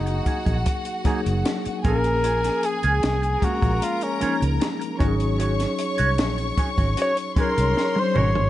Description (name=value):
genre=lush 1970s-style soul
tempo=76 BPM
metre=4/4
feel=straight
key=unclear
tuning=A4 = 440 Hz
part: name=warm flugelhorn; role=melody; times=0.0-8.5 s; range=Db4 to Db5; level=-24 LUFS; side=left 1 dB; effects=none
part: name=warm studio string section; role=second line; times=0.0-8.5 s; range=Gb4 to Db6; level=-29 LUFS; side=equal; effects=none
part: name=mellow tine electric piano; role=accompaniment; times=0.0-8.5 s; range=F3 to Ab4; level=-28 LUFS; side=left 2 dB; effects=medium stereo tremolo
part: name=vintage muted fingered electric bass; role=bass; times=0.0-8.5 s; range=Gb1 to Db2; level=-24 LUFS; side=equal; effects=none
part: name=clean electric guitar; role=riff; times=0.1-8.4 s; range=Bb3 to Bb4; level=-30 LUFS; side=right 4 dB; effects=wah
part: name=compact cocktail drum kit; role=drums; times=0.1-8.5 s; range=hi-hat, kick drum, snare drum, toms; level=-25 LUFS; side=equal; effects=none
room=light reverb, studio ambience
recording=nothing above 10.6 kHz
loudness=-20 LUFS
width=side -14 dB against mid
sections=0.0-8.5 A section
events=flugelhorn solo 0.0-8.5; drum fill 7.8-8.5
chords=0.0 Gb69; 1.8 Bbm7; 5.0 Ab7sus4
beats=0.66 1.45 | 2.24 3.03 3.82 4.61 | 5.40 6.19 6.97 7.76